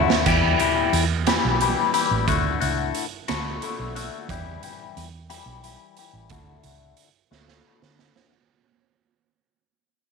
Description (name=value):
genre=psychedelic rock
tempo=60 BPM (dotted quarters)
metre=6/8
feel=straight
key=unclear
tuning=A4 = 439 Hz
part: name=twangy electric guitar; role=riff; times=0.0-8.3 s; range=D3 to G4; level=-24 LUFS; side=left 13 dB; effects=phaser, low-pass filter
part: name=vintage muted fingered electric bass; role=bass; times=0.0-8.1 s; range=A1 to D3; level=-26 LUFS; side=right 2 dB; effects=none
part: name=raw garage drum kit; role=drums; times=0.1-8.3 s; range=crash cymbal, hi-hat, kick drum, snare drum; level=-25 LUFS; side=right 8 dB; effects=none
room=light reverb, small room ambience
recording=1960s-style stereo with parts hard left and right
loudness=-20 LUFS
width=side -4 dB against mid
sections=0.0-8.3 A section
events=fade-out 0.0-8.3; drum fill 0.0, 7.3-8.3; filter sweep on clean electric guitar 0.0-8.3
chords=0.3 Em; 2.3 Dadd9; 4.3 Em; 6.3 Dadd9